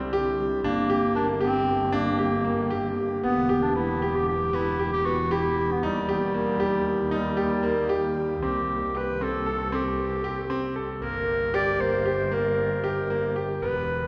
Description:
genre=contemporary instrumental, chamber music in an uneven meter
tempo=232 BPM (eighths)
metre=5/8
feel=straight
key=unclear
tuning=A4 = 440 Hz
part: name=clear clarinet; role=melody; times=0.0-14.1 s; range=G3 to D5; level=-30 LUFS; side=equal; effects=none
part: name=shimmering ambient pad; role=sustained chords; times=0.0-8.4, 13.6-14.1 s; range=D3 to G4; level=-38 LUFS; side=equal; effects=none
part: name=bright concert grand piano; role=arpeggios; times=0.0-14.1 s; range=Bb3 to A4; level=-29 LUFS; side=equal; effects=none
part: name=clear double bass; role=bass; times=0.0-14.1 s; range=E1 to Eb2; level=-34 LUFS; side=equal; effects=none
room=wet cathedral reverb, RT60 5.8 s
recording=recorded in a church or concert hall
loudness=-26 LUFS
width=mono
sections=0.0-8.4 A section; 8.4-14.1 B section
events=none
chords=0.0 Cadd9; 0.6 Gm; 3.2 Em; 5.8 Eb; 8.4 C5; 11.0 Gm

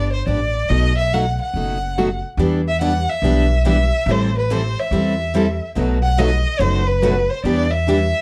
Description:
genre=acoustic string swing (jazz manouche)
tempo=142 BPM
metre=4/4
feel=swing 65% on 8ths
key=E minor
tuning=A4 = 440 Hz
part: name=warm violin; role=melody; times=0.0-8.2 s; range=B4 to F#5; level=-24 LUFS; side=equal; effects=none
part: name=picked plugged-in steel-string acoustic guitar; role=accompaniment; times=0.0-8.0 s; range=B2 to A4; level=-24 LUFS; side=equal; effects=none
part: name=upright bass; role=bass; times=0.0-8.1 s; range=F#1 to E2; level=-22 LUFS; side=equal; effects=none
part: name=picked steel-string acoustic guitar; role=accompaniment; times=2.4-8.0 s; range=B2 to B4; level=-27 LUFS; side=equal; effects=none
room=moderate small room reverb, RT60 0.5 s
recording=dark, warm production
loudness=-18 LUFS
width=mono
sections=0.0-8.2 A section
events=none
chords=0.0 Em7; 0.7 B7; 2.4 Em7; 4.1 Am7; 5.8 B7; 7.4 Em7

